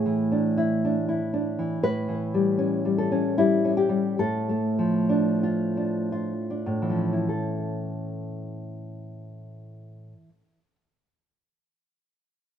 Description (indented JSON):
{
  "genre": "romantic piece for solo classical guitar",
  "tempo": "49-81 BPM",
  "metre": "3/4",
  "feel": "rubato",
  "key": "A major",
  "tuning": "A4 = 440 Hz",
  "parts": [
    { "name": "nylon-string guitar", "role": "solo", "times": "0.0-10.8 s", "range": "A2 to B4", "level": "-24 LUFS", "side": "equal", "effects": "slapback echo" }
  ],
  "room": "little or no reverb",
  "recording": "recorded outdoors, with no room sound",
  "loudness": "-23 LUFS",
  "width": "side -9 dB against mid",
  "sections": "0.0-7.3 A section; 7.3-12.6 B section",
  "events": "slowing down 0.7-7.3",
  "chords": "0.0 E7/A; 1.8 A7; 4.2 Dm/A; 7.3 A",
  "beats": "0.31 1.07 | 1.81 2.57 3.35 | 4.18 5.09 6.13 | 7.29 8.38 9.49 | 10.59"
}